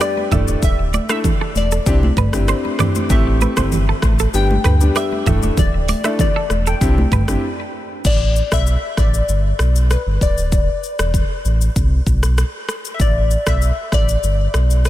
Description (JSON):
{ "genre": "afrobeats", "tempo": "97 BPM", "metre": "4/4", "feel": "straight", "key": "unclear", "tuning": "A4 = 440 Hz", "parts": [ { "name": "glassy wavetable pluck", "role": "melody", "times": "0.0-14.9 s", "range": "B4 to G5", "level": "-24 LUFS", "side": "left 3 dB", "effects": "chorus, ping-pong delay" }, { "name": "warm grand piano", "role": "accompaniment", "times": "0.0-7.4 s", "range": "G3 to A4", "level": "-23 LUFS", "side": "left 2 dB", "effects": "none" }, { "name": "semi-hollow electric guitar", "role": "riff", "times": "0.0-7.2 s", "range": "A4 to E5", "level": "-26 LUFS", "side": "right 6 dB", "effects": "analog chorus, ping-pong delay" }, { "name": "afro-pop drum kit", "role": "drums", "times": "0.0-14.9 s", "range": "crash cymbal, hi-hat, kick drum, rim click, shaker, toms", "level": "-20 LUFS", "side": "equal", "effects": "none" }, { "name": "congas", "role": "percussion", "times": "0.2-7.3 s", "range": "none", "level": "-25 LUFS", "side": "right 3 dB", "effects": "none" }, { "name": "sub bass with octave", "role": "bass", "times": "0.3-14.9 s", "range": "D1 to D2", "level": "-17 LUFS", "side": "equal", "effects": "none" } ], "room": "light reverb, digital ambience", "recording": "none", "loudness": "-14 LUFS", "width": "side -14 dB against mid", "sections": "0.0-8.0 A section; 8.0-14.9 B section", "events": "break 7.4-8.0", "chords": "0.3 Dsus2; 1.9 Cadd9; 3.1 Am7; 4.3 G; 5.3 Dsus2; 6.8 Cadd9; 8.0 Asus24; 9.3 G; 10.2 Dsus2; 11.8 Cmaj7(no3)/B; 13.0 Asus24; 14.2 G", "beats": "0.01 | 0.63 1.24 1.86 2.48 | 3.10 3.72 4.34 4.96 | 5.57 6.19 6.81 7.43 | 8.05 8.67 9.29 9.90 | 10.52 11.14 11.76 12.38 | 13.00 13.62 14.23 14.85" }